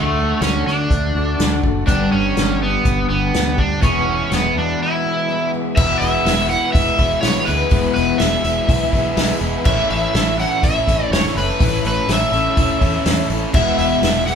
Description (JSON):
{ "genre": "folk rock and heartland rock", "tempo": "124 BPM", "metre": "4/4", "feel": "straight", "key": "E mixolydian", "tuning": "A4 = 440 Hz", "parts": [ { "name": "overdriven slide guitar", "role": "melody", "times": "0.0-14.3 s", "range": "A3 to F#5", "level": "-20 LUFS", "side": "equal", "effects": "none" }, { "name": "picked twelve-string acoustic guitar", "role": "accompaniment", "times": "0.0-14.3 s", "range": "E2 to G4", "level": "-24 LUFS", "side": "left 4 dB", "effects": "none" }, { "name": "tonewheel organ", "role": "sustained chords", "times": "0.0-14.3 s", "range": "D3 to A4", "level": "-32 LUFS", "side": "equal", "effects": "none" }, { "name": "crunchy overdriven guitar", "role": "riff", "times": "0.0-14.3 s", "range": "E2 to G#4", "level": "-24 LUFS", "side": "right 1 dB", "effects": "none" }, { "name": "fingered electric bass", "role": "bass", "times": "0.0-14.3 s", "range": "E1 to D3", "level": "-24 LUFS", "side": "equal", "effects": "none" }, { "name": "unplugged drum kit", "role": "drums", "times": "0.4-14.3 s", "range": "crash cymbal, hi-hat, kick drum, snare drum", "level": "-20 LUFS", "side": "equal", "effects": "none" } ], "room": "moderate large studio reverb, RT60 1.2 s", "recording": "band playing live in one room", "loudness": "-15 LUFS", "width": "side -7 dB against mid", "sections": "0.0-5.8 A section; 5.8-14.3 B section", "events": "break 4.8-5.8", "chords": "0.0 D; 1.9 G; 3.8 E; 9.7 A; 13.5 E" }